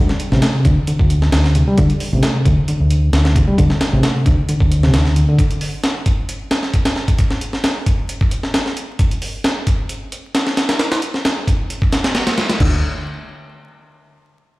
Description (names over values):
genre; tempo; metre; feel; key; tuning
breakbeat, breaks; 133 BPM; 4/4; straight; unclear; A4 = 444 Hz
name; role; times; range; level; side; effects
reed electric piano; riff; 0.0-5.4, 12.6-12.8 s; C3 to A3; -18 LUFS; equal; tremolo, dub echo
fingered electric bass; bass; 0.0-5.2, 12.6-12.8 s; A1 to D2; -15 LUFS; equal; none
breakbeat sampler-style drum kit; drums; 0.1-12.7 s; crash cymbal, hi-hat, kick drum, snare drum; -17 LUFS; equal; none
room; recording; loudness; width
light reverb; played on a big sound system in a bare room, stone room reverb, vinyl crackle; -14 LUFS; side -20 dB against mid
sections
0.0-12.6 A section; 12.6-14.4 B section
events
none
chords
0.0 D5; 12.6 N.C.